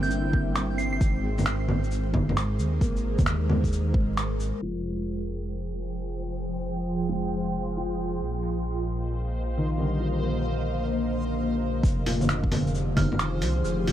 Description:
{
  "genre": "future garage",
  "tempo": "133 BPM",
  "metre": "4/4",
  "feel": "swing 66% on 16ths",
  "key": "F dorian",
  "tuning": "A4 = 439 Hz",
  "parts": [
    { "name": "soft synth bell", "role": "melody", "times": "0.0-1.0, 13.0-13.2 s", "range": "F6 to C7", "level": "-36 LUFS", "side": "right 4 dB", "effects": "chorus, digital delay" },
    { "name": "felt-muted upright piano", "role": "accompaniment", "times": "0.0-13.9 s", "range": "Bb2 to E4", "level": "-33 LUFS", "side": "left 2 dB", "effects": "vintage 12-bit sampler grit, sidechain pumping, dub echo" },
    { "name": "ethereal airy pad", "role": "sustained chords", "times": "0.0-13.9 s", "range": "F3 to G5", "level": "-31 LUFS", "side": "right 1 dB", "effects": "ensemble chorus, built-in reverb, phaser, sidechain pumping" },
    { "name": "dark detuned saw bass", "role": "bass", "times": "0.0-13.9 s", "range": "F1 to Eb2", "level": "-29 LUFS", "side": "equal", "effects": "sidechain pumping" },
    { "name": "lo-fi sampler-style drum kit", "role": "drums", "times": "0.0-4.5, 11.8-13.9 s", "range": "bongos, finger snaps, hi-hat, shaker", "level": "-28 LUFS", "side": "equal", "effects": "overdrive" },
    { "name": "electronic kick drum", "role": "drums", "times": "0.3-4.1, 11.8-13.1 s", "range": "none", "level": "-25 LUFS", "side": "equal", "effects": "none" },
    { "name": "backwards swelling texture", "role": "texture", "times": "5.8-13.9 s", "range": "C5", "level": "-39 LUFS", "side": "right 1 dB", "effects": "built-in reverb" }
  ],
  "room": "light reverb, digital ambience",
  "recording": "vinyl crackle, low-pass filter",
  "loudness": "-24 LUFS",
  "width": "side -11 dB against mid",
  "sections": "0.0-4.6 A section; 4.6-11.8 B section; 11.8-13.9 C section",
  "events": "filter sweep on felt piano 0.0-4.6; filter sweep 4.6-11.8",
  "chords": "0.0 C; 1.0 Abadd9; 4.6 Fmadd9; 8.2 Bbsus4; 11.8 Fmadd9"
}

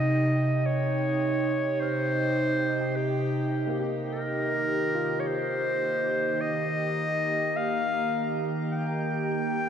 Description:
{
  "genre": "ambient",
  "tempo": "52 BPM",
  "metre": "4/4",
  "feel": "straight",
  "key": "unclear",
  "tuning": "A4 = 440 Hz",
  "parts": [
    { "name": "clear clarinet", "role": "melody", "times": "0.0-9.7 s", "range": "G4 to G5", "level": "-28 LUFS", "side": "left 1 dB", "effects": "diffuse ambient delay" },
    { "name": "glassy FM pad", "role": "sustained chords", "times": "0.0-9.7 s", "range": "C3 to Bb5", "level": "-27 LUFS", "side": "right 1 dB", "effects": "ensemble chorus, built-in reverb" },
    { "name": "felt-muted upright piano", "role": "arpeggios", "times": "0.0-9.7 s", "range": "Bb3 to G6", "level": "-40 LUFS", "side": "left 2 dB", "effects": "diffuse ambient delay" }
  ],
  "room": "wet lush hall reverb, RT60 2.5 s",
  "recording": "dreamy mix soaked in reverb, cassette tape",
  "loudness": "-25 LUFS",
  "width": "side -8 dB against mid",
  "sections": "0.0-9.7 A section",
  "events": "fade-in on felt piano 0.0-9.7",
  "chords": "0.0 Cm; 4.1 Eb"
}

